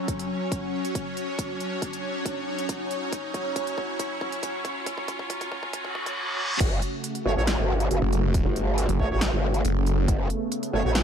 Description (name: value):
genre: heavy wobble dubstep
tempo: 138 BPM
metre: 4/4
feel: half-time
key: F# phrygian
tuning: A4 = 440 Hz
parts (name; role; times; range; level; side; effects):
- supersaw pad; sustained chords; 0.0-11.0 s; C#3 to C#5; -30 LUFS; equal; phaser, sidechain pumping, low-pass filter
- riser and reverse cymbal; sound effects; 0.0-6.6 s; none; -33 LUFS; equal; none
- big-room dance drum kit; drums; 0.1-11.0 s; crash cymbal, hi-hat, snare drum; -31 LUFS; equal; none
- electronic kick drum; drums; 0.1-10.2 s; none; -29 LUFS; equal; none
- growl bass; bass; 6.6-11.0 s; F#1 to A1; -24 LUFS; equal; chorus, overdrive
- bright brass ensemble; stabs; 7.3-10.9 s; A3 to C#5; -31 LUFS; right 4 dB; ping-pong delay
- snarling distorted saw bass; bass; 8.0-10.1 s; F#1; -23 LUFS; equal; overdrive
room: light reverb, digital ambience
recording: dark, warm production, high-pass filter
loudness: -24 LUFS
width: side -8 dB against mid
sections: 0.0-6.6 A section; 6.6-11.0 B section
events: build-up 0.0-6.6; drum fill 0.0-6.2; riser 0.0-6.6; filter sweep 0.0-6.6; reverse cymbal 5.7-6.6; drop 6.6-11.0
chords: 0.0 F#5; 6.6 F#m